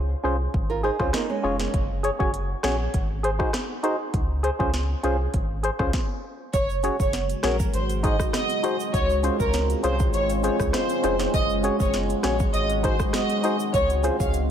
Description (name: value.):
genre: dancehall.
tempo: 100 BPM.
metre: 4/4.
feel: straight.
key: Db major.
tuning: A4 = 440 Hz.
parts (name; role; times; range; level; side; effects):
warm sub bass; bass; 0.0-14.5 s; F1 to Db2; -27 LUFS; equal; none.
percussive organ stab; accompaniment; 0.2-14.2 s; Db4 to Db5; -27 LUFS; left 1 dB; chorus.
afro-pop drum kit; drums; 0.5-14.5 s; hi-hat, kick drum, rim click, snare drum; -27 LUFS; equal; none.
nylon-string guitar; arpeggios; 0.7-1.7 s; Ab3 to Bb4; -29 LUFS; right 6 dB; tape echo.
warm studio violin section; melody; 6.5-14.3 s; Bb4 to F5; -26 LUFS; equal; tape echo.
deep dark ambient pad; sustained chords; 7.2-14.5 s; Ab3 to Gb4; -28 LUFS; right 1 dB; chorus, built-in reverb, sidechain pumping.
egg shaker and timbales; percussion; 6.5-14.5 s; none; -40 LUFS; right 9 dB; none.
room: moderate plate reverb, RT60 2.4 s.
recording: dreamy mix soaked in reverb.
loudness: -21 LUFS.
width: side -9 dB against mid.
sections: 0.0-6.5 A section; 6.5-14.5 B section.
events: stop 5.9-6.5.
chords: 0.0 Dbmaj7; 1.7 Gbsus2; 2.9 Ab7; 4.1 Dbmaj7; 6.5 Gbsus2; 7.7 Ab7; 8.9 Dbmaj7; 11.3 Gbsus2; 12.5 Ab7; 13.7 Dbmaj7.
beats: 0.54 1.14 | 1.74 2.34 2.94 3.54 | 4.14 4.74 5.34 5.94 | 6.54 7.14 7.74 8.34 | 8.94 9.54 10.14 10.74 | 11.34 11.94 12.54 13.14 | 13.74 14.34.